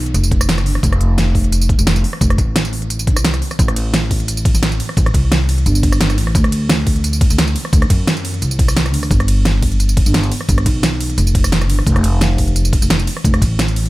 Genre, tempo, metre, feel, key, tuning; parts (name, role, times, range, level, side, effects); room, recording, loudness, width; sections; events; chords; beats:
liquid drum and bass; 174 BPM; 4/4; straight; A4 = 440 Hz
upright bass; bass; 0.0-13.9 s; F1 to F#2; -16 LUFS; equal; tube saturation
pop drum kit; drums; 0.1-13.9 s; hi-hat, ride cymbal, rim click, snare drum, tambourine; -19 LUFS; right 1 dB
electronic kick drum; drums; 0.3-13.5 s; -15 LUFS; equal
little or no reverb; -13 LUFS; side -18 dB against mid
0.0-13.9 A section
0.14 0.49 | 0.83 1.18 1.52 1.87 | 2.21 2.56 2.90 3.25 | 3.59 3.94 4.28 4.62 | 4.97 5.31 5.66 6.00 | 6.35 6.69 7.04 7.38 | 7.73 8.07 8.42 8.76 | 9.11 9.45 9.80 10.14 | 10.49 10.83 11.18 11.52 | 11.87 12.21 12.56 12.90 | 13.25 13.59